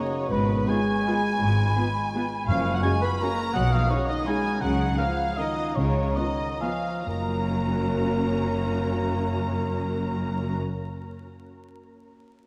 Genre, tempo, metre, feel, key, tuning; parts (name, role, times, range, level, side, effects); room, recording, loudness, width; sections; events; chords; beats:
classical, orchestral ballroom waltz; 123-184 BPM; 3/4; rubato; F# major; A4 = 437 Hz
rich studio violin section; melody; 0.0-10.6 s; Cb5 to B5; -38 LUFS; equal
mellow cor anglais; second line; 0.0-10.6 s; A#4 to G#5; -33 LUFS; equal
mellow hollow concert flute; second line; 0.0-6.8 s; G#5 to D#6; -37 LUFS; equal
rich studio violin section; second line; 0.0-10.6 s; Cb5 to B5; -38 LUFS; equal
warm studio viola section; accompaniment; 0.0-10.6 s; Cb4 to A#4; -37 LUFS; equal
mellow French horn section; sustained chords; 0.0-10.6 s; Cb3 to B3; -32 LUFS; equal
clear studio cello section; bass; 0.3-10.6 s; F#2 to C#3; -33 LUFS; equal
warm studio double bass section; bass; 0.3-10.6 s; F#1 to C#2; -32 LUFS; equal
timpani; percussion; 2.5-3.0, 5.8-11.3 s; F#2 to C#3; -34 LUFS; equal
wet cathedral reverb, RT60 5.1 s; in a vast, echoing space, vinyl crackle; -25 LUFS; mono
0.0-7.1 A section; 7.1-9.8 B section
slowing down 4.1-7.1
0.3 Fdim/Ab; 2.5 F#; 3.6 G#m/B; 4.6 F#/C#; 5.8 C#7; 7.1 F#
| 0.30 0.68 1.06 | 1.41 1.77 2.14 | 2.48 2.84 3.21 | 3.55 3.90 4.27 | 4.62 4.99 5.38 | 5.76 6.17 6.62 | 7.07 7.53 8.01 | 8.45 8.90 9.37